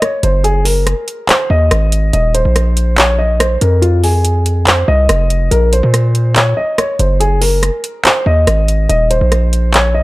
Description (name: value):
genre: hip hop, trap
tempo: 142 BPM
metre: 4/4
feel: half-time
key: unclear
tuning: A4 = 441 Hz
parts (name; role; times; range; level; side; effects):
- dark grand piano; melody; 0.0-10.0 s; F4 to Eb5; -16 LUFS; equal; low-pass filter
- trap drum kit; drums; 0.0-9.8 s; handclaps, hi-hat, rim click; -14 LUFS; equal; none
- distorted 808-style bass; bass; 0.2-10.0 s; Eb1 to Bb2; -12 LUFS; equal; distortion
room: digital ambience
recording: dark, warm production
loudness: -10 LUFS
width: side -19 dB against mid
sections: 0.0-10.0 A section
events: none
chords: 0.4 Ab5; 2.1 Eb5; 3.8 Fm7; 5.5 Bbsus2; 7.2 Ab5; 8.9 Eb5